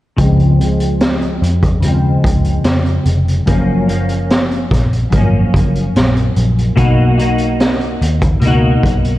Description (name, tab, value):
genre	indie pop, bedroom pop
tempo	73 BPM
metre	4/4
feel	straight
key	Db major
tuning	A4 = 440 Hz
part	semi-hollow electric guitar	accompaniment	0.2-9.2 s	Gb2 to Gb4	-15 LUFS	left 1 dB	ensemble chorus, warbly pitch drift, low-pass filter
part	vintage muted picked electric bass	bass	0.2-9.2 s	F1 to F2	-16 LUFS	equal	none
part	raw garage drum kit	drums	0.2-9.2 s	hi-hat, kick drum, snare drum	-16 LUFS	equal	none
room	light reverb, small room ambience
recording	cassette tape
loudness	-11 LUFS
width	side -16 dB against mid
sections	0.2-9.2 A section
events	filter sweep on clean electric guitar 0.2-9.2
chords	0.2 Dbmaj7; 3.5 Gbmaj7; 6.8 Cbmaj7